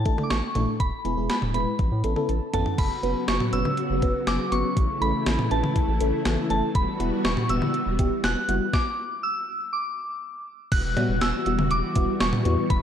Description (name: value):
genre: synth-pop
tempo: 121 BPM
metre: 4/4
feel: straight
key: unclear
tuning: A4 = 440 Hz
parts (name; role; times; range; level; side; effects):
- soft synth bell; melody; 0.0-12.8 s; A5 to F#6; -28 LUFS; equal; chorus, tape echo
- round analog bass; bass; 0.0-12.8 s; E1 to A2; -27 LUFS; equal; none
- FM electric piano with soft pad layer; accompaniment; 0.1-12.6 s; G3 to A5; -29 LUFS; left 1 dB; chorus, phaser
- gated 80s digital drum machine; drums; 0.1-12.8 s; cowbell, crash cymbal, hi-hat, kick drum, snare drum, toms; -26 LUFS; equal; gated reverb, gated reverb snare
- string machine, violas; sustained chords; 2.8-12.8 s; C#3 to F#4; -29 LUFS; left 1 dB; ensemble chorus
room: moderate plate reverb, RT60 2.5 s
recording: dark, warm production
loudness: -22 LUFS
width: side -9 dB against mid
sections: 0.0-2.8 A section; 2.8-10.7 B section; 10.7-12.8 C section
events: drum fill 1.8-2.8; FM electric piano fill 2.0-2.8; stop 8.7-10.7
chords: 0.0 Asus4; 0.8 E; 1.8 Aadd9; 2.8 F#sus4; 4.8 A; 6.8 Emadd9; 8.7 N.C.; 10.7 Emadd9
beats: 0.30 | 0.80 1.30 1.79 2.29 | 2.78 3.28 3.78 4.27 | 4.77 5.26 5.76 6.25 | 6.75 7.25 7.74 8.24 | 8.73 9.23 9.73 10.22 | 10.72 11.21 11.71 12.21 | 12.70